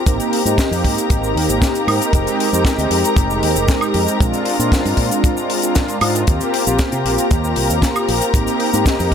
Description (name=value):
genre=nu-disco, nu disco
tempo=116 BPM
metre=4/4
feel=straight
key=Eb major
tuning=A4 = 443 Hz
part: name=mellow synth brass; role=accompaniment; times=0.0-9.1 s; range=Ab3 to G4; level=-18 LUFS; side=equal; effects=chorus, ping-pong delay
part: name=rich studio string section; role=sustained chords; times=0.0-9.1 s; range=Bb4 to Bb5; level=-24 LUFS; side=left 1 dB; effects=sidechain pumping
part: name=fingered electric bass with an envelope filter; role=bass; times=0.1-9.1 s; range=F1 to C3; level=-21 LUFS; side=equal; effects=none
part: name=kick drum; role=drums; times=0.1-9.1 s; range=none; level=-16 LUFS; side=equal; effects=small room reverb
part: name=tight funk drum kit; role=drums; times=0.1-9.1 s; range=cabasa, hi-hat, snare drum, woodblock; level=-22 LUFS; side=left 2 dB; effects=small room reverb
room=light reverb, studio reverb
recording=none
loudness=-14 LUFS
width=side -8 dB against mid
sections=0.0-9.1 A section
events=none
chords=0.1 Abmaj9; 2.1 Fm9; 4.2 Bb9; 6.3 Eb69; 8.3 Abmaj9